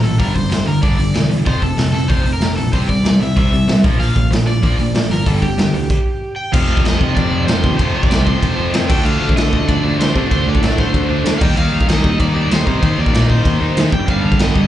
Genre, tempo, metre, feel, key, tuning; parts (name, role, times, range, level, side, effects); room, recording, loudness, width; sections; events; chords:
punk rock; 190 BPM; 4/4; straight; F mixolydian from 6.5 s; A4 = 438 Hz
overdriven semi-hollow guitar; melody; 0.0-14.7 s; G4 to G5; -23 LUFS; equal
tight distorted guitar; riff; 0.0-14.7 s; F2 to Eb4; -20 LUFS; equal; distortion
picked electric bass; bass; 0.0-14.7 s; E1 to Eb3; -18 LUFS; equal
raw garage drum kit; drums; 0.0-14.6 s; crash cymbal, hi-hat, kick drum, snare drum; -17 LUFS; equal
distorted electric guitar; riff; 6.5-14.7 s; F2 to Eb4; -21 LUFS; equal; overdrive
small room reverb; live gig heard through the venue's PA, club reverb, nothing above 11.0 kHz; -13 LUFS; side -12 dB against mid
0.0-6.5 A section; 6.5-14.7 B section
stop 5.9-6.5
0.2 G5; 1.5 F; 2.7 C; 3.8 Bb; 5.3 G5; 5.9 N.C.; 6.5 F; 8.9 Dm; 11.4 Eb; 14.1 G